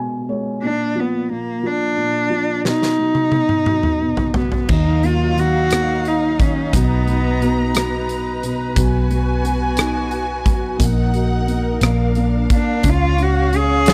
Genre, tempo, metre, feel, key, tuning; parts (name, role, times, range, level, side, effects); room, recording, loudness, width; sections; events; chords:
six-eight pop ballad; 59 BPM (dotted quarters); 6/8; straight; Eb minor; A4 = 444 Hz
felt-muted upright piano; accompaniment; 0.0-13.9 s; Bb2 to Ab5; -25 LUFS; equal
warm cello; melody; 0.6-8.1, 12.5-13.9 s; Bb3 to Ab4; -22 LUFS; equal
huge arena drum kit; drums; 2.7-13.9 s; crash cymbal, hi-hat, kick drum, rim click, snare drum, toms; -22 LUFS; equal
warm studio string section; sustained chords; 4.7-13.9 s; Gb3 to A#5; -27 LUFS; equal
vintage muted fingered electric bass; bass; 4.7-13.9 s; Bb1 to Eb2; -22 LUFS; equal
little or no reverb; dry, close 1970s-style studio recording; -18 LUFS; mono
0.0-4.7 A section; 4.7-13.9 B section
felt piano fill 0.0-0.6; drum fill 2.6-4.7
0.0 Abm/Cb; 0.6 Bb; 2.6 B; 4.7 Ebmadd9; 6.7 Bmaj7; 8.8 Abm7/Cb; 10.8 Ebm/Bb; 11.8 Bb; 12.8 Db